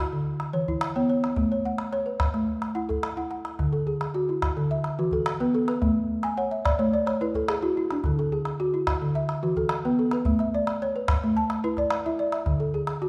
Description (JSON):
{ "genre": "west african traditional, West African string and xylophone music", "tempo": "108 BPM", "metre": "4/4", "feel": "straight", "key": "unclear", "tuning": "A4 = 439 Hz", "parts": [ { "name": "balafon", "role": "arpeggios", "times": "0.0-13.1 s", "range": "D3 to A5", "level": "-27 LUFS", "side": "equal", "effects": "none" }, { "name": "calabash", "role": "percussion", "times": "0.4-13.0 s", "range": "none", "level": "-32 LUFS", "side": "equal", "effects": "none" } ], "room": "wet recital hall reverb, RT60 1.6 s", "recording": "none", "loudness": "-26 LUFS", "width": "mono", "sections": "0.0-3.6 A section; 3.6-13.1 B section", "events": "balafon fill 6.2-8.0", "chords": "0.3 E5; 1.4 A; 3.6 D; 4.7 E5; 5.8 A; 8.0 D; 9.1 E5; 10.3 A; 12.5 D5" }